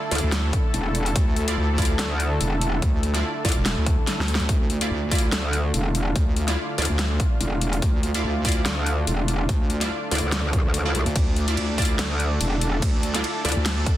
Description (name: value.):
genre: heavy wobble dubstep.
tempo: 144 BPM.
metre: 4/4.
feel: swing 54% on 16ths, half-time.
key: D minor.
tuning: A4 = 440 Hz.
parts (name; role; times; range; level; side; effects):
lush unison pad; sustained chords; 0.0-14.0 s; D3 to A4; -30 LUFS; equal; chorus, sidechain pumping.
orchestra-hit-like synth stab; stabs; 0.1-13.6 s; E4 to D5; -30 LUFS; right 1 dB; built-in reverb, tape echo.
metallic wobble bass; bass; 0.1-13.5 s; E1 to D2; -23 LUFS; equal; chorus, overdrive.
dubstep drum kit; drums; 0.1-14.0 s; hi-hat, ride cymbal, snare drum; -28 LUFS; left 1 dB; studio reverb.
wobble bass; bass; 0.2-13.8 s; E1 to D2; -24 LUFS; equal; chorus, overdrive.
electronic kick drum; drums; 0.5-14.0 s; none; -22 LUFS; equal; studio reverb.
room: little or no reverb.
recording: dense, heavily limited modern master.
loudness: -20 LUFS.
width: side -13 dB against mid.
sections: 0.0-14.0 A section.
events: drum fill 4.1-4.5.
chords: 0.0 Dmadd9.